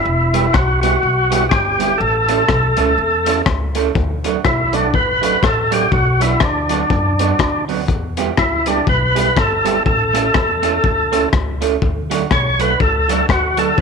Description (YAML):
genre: ska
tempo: 122 BPM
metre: 4/4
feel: swing 58% on 8ths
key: D major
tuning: A4 = 445 Hz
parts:
  - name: percussive tonewheel organ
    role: melody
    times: 0.0-13.8 s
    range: D4 to C#5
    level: -16 LUFS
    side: equal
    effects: overdrive, fast rotary speaker
  - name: upright bass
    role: bass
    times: 0.1-13.8 s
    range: E1 to F#2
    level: -21 LUFS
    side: equal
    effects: none
  - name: electric guitar through a small old amp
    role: accompaniment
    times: 0.3-13.7 s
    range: F#3 to A4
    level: -22 LUFS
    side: right 13 dB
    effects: spring reverb
  - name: crunchy breakbeat drum kit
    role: drums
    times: 0.3-13.8 s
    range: hi-hat, kick drum, rim click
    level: -19 LUFS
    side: left 4 dB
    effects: none
room: light reverb, studio reverb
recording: 1960s-style stereo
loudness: -13 LUFS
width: side -5 dB against mid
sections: 0.0-4.0 A section; 4.0-13.8 B section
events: none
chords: 0.0 Em; 2.0 A; 4.0 D; 5.9 Bm; 7.9 Em; 9.9 A; 11.8 D